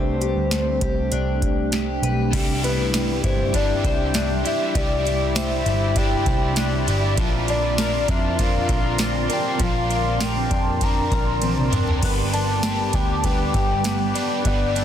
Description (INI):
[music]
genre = dream pop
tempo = 99 BPM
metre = 4/4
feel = straight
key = C major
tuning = A4 = 440 Hz
[part]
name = soft octave-layered synth lead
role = melody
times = 0.0-14.8 s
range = B4 to Bb5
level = -27 LUFS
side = left 2 dB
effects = chorus, tremolo, digital delay
[part]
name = warbly tape-like pad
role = sustained chords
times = 0.0-14.8 s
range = G3 to E6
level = -28 LUFS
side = equal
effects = chorus, built-in reverb
[part]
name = fingerpicked twelve-string acoustic guitar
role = arpeggios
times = 0.0-14.8 s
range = F3 to C5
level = -28 LUFS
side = left 4 dB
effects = lush chorus, digital delay
[part]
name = vintage muted picked electric bass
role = bass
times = 0.0-14.8 s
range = F1 to F2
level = -25 LUFS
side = equal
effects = none
[part]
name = booming analog drum machine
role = drums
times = 0.2-14.8 s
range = crash cymbal, hi-hat, kick drum, ride cymbal, snare drum, tambourine, toms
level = -24 LUFS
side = equal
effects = overdrive
[part]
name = overdriven electric guitar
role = accompaniment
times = 2.3-14.8 s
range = G2 to B4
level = -27 LUFS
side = right 2 dB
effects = harmonic tremolo, ensemble chorus
[sound]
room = light reverb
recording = dense, heavily limited modern master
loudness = -19 LUFS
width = side -9 dB against mid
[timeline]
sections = 0.0-2.3 A section; 2.3-14.8 B section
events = drum fill 11.4-12.0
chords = 0.0 Am11; 2.3 Cadd9; 7.2 Bbadd9; 12.0 G